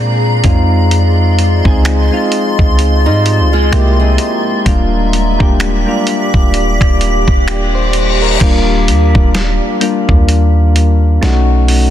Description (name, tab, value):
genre	contemporary R&B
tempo	64 BPM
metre	4/4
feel	swing 58% on 16ths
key	Eb major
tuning	A4 = 439 Hz
part	soft electric-piano-like synth keys	accompaniment	0.0-11.9 s	G3 to C5	-16 LUFS	left 3 dB	chorus, tremolo
part	granular cloud pad	sustained chords	0.0-8.4 s	F4 to D6	-18 LUFS	equal	built-in reverb
part	clean 808-style bass	bass	0.0-11.9 s	Eb1 to Bb2	-12 LUFS	equal	none
part	downlifter and reverse cymbal	sound effects	7.1-8.4 s	none	-21 LUFS	left 6 dB	none
part	dusty soul sampler-style drum kit	drums	0.4-11.9 s	crash cymbal, finger snaps, hi-hat, kick drum, snare drum	-14 LUFS	equal	soft clipping on snare
part	nylon-string guitar	arpeggios	3.1-4.6 s	G3 to Ab4	-20 LUFS	right 8 dB	tape echo
room	little or no reverb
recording	dense, heavily limited modern master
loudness	-9 LUFS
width	side -11 dB against mid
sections	0.0-8.4 A section; 8.4-11.9 B section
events	reverse cymbal 7.4-8.4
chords	0.4 Dbmaj9; 3.7 C7b13; 4.7 Ebmaj7; 11.2 B9